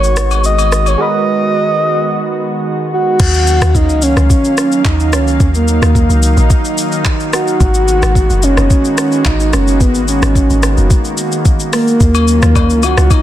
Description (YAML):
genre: amapiano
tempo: 109 BPM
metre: 4/4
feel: straight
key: Eb minor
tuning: A4 = 440 Hz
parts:
  - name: breathy flute-like synth lead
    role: melody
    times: 0.0-13.2 s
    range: Bb3 to Eb5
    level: -14 LUFS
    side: right 1 dB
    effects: chorus, tape echo
  - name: warm analog keys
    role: accompaniment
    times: 0.0-3.2 s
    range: Ab3 to Cb5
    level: -20 LUFS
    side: right 5 dB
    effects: chorus
  - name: warm analog pad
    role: sustained chords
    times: 0.0-13.2 s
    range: Eb3 to F5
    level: -19 LUFS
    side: equal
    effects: wide subtle chorus, sidechain pumping
  - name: saturated sub bass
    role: bass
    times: 0.0-1.0 s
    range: Ab1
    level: -14 LUFS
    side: equal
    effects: none
  - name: smooth R&B drum kit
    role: drums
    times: 0.0-13.2 s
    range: crash cymbal, handclaps, hi-hat, kick drum, rim click, shaker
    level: -14 LUFS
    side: equal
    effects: vintage 12-bit sampler grit, soft clipping on snare
  - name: agogo bells and woodblock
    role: percussion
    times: 0.3-1.0, 12.1-13.2 s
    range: none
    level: -21 LUFS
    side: left 14 dB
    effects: none
  - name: deep log drum bass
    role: bass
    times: 3.2-13.1 s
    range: Gb1 to Eb2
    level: -12 LUFS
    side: equal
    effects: none
room: digital ambience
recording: dense, heavily limited modern master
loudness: -10 LUFS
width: side -12 dB against mid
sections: 0.0-3.2 A section; 3.2-13.2 B section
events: break 1.0-3.2; drop 3.2-13.2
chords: 0.0 Abm9; 3.2 Ebm9; 7.6 Abm9; 12.0 Ebm9